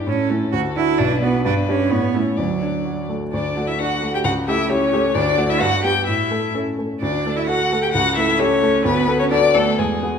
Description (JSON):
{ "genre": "quick classical-period movement for piano trio", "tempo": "130 BPM", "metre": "2/4", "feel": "straight", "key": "D major", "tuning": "A4 = 440 Hz", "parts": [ { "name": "rich violin", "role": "melody", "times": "0.0-10.2 s", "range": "G#4 to G5", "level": "-21 LUFS", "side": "left 7 dB", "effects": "none" }, { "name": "warm grand piano", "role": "accompaniment", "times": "0.0-10.2 s", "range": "B1 to A4", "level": "-21 LUFS", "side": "equal", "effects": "none" }, { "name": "rich cello", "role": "second line", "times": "0.1-10.2 s", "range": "F#3 to G4", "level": "-22 LUFS", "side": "right 7 dB", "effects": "none" } ], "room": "wet recital hall reverb, RT60 1.4 s", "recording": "none", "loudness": "-16 LUFS", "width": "side -7 dB against mid", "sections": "0.0-3.3 A section; 3.3-10.2 B section", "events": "none", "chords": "0.1 A; 0.5 D; 1.0 Bm; 1.4 G; 1.9 A; 2.4 D; 4.2 A7/C#; 5.2 D; 5.6 G; 6.1 A; 7.0 D; 7.9 A7/C#; 8.8 Bm7/D" }